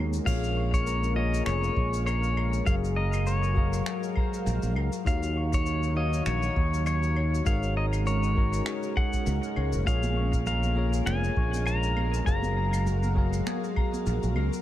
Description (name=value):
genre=sunset chillout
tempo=100 BPM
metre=4/4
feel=swing 56% on 16ths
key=Bb minor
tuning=A4 = 440 Hz
part: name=bell-like tine electric piano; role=accompaniment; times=0.0-14.6 s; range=Eb3 to F5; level=-33 LUFS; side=moving between left 5 dB and right 5 dB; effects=auto-pan, tape echo
part: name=lush unison pad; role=sustained chords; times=0.0-14.6 s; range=Gb3 to F5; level=-37 LUFS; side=right 1 dB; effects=chorus, phaser
part: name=modern bright fingered electric bass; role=bass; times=0.0-14.5 s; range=F1 to Eb2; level=-27 LUFS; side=equal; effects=none
part: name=jazz brush drum kit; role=drums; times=0.1-14.6 s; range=claves, crash cymbal, finger snaps, shaker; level=-41 LUFS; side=left 1 dB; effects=tape echo
part: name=pedal steel guitar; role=melody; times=0.3-13.1 s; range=Db5 to Bb5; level=-33 LUFS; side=left 2 dB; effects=tape echo
part: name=concert harp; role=arpeggios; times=0.3-14.6 s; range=Ab4 to Db6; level=-38 LUFS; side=left 4 dB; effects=tape echo
part: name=electronic kick drum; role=drums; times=0.3-13.9 s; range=none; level=-27 LUFS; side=equal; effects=none
part: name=congas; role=percussion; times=10.0-14.5 s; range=none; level=-39 LUFS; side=right 4 dB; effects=tape echo
room=little or no reverb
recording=echo-heavy mix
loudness=-24 LUFS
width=side -13 dB against mid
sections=0.3-14.6 A section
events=none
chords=0.3 Bbm7; 2.7 Gbmaj9; 5.1 Ebm9; 7.5 Ab9sus4; 9.9 Bbm7; 12.3 Gbmaj9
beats=| 0.26 0.86 1.46 2.06 | 2.66 3.26 3.86 4.46 | 5.06 5.66 6.26 6.86 | 7.46 8.06 8.66 9.26 | 9.86 10.46 11.06 11.66 | 12.26 12.86 13.46 14.06